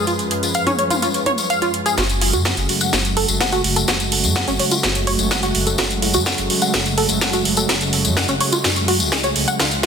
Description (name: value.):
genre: melodic techno.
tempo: 126 BPM.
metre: 4/4.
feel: straight.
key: F# harmonic minor.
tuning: A4 = 440 Hz.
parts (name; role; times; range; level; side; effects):
warm analog pad; sustained chords; 0.0-9.9 s; C#3 to B4; -24 LUFS; right 2 dB; chorus, sidechain pumping.
tight sequenced synth; arpeggios; 0.0-9.9 s; C#4 to F#5; -22 LUFS; equal; chorus, sidechain pumping, ping-pong delay.
swarming drone; drone; 0.0-2.0 s; F#2; -34 LUFS; equal; built-in reverb, sidechain pumping.
techno drum kit; drums; 0.1-9.9 s; hi-hat, snare drum, toms; -20 LUFS; right 1 dB; sidechain pumping on hats, high-pass filter on hats, small room ambience, sidechain pumping on toms, high-pass filter on toms, high-pass filter on snare.
tambourine; percussion; 0.1-9.8 s; none; -25 LUFS; left 5 dB; none.
dark detuned saw bass; bass; 2.0-9.9 s; F#1 to F#2; -24 LUFS; equal; sidechain pumping.
electronic kick drum; drums; 2.0-9.7 s; none; -29 LUFS; equal; high-pass filter on kick, small room ambience.
room: moderate lush hall reverb, RT60 1.9 s.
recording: dense, heavily limited modern master, high-pass filter.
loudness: -16 LUFS.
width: side -6 dB against mid.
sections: 0.0-2.0 A section; 2.0-9.9 B section.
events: build-up 2.0-9.9; drum fill 2.0-9.9.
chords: 0.0 C#; 2.0 F#madd9.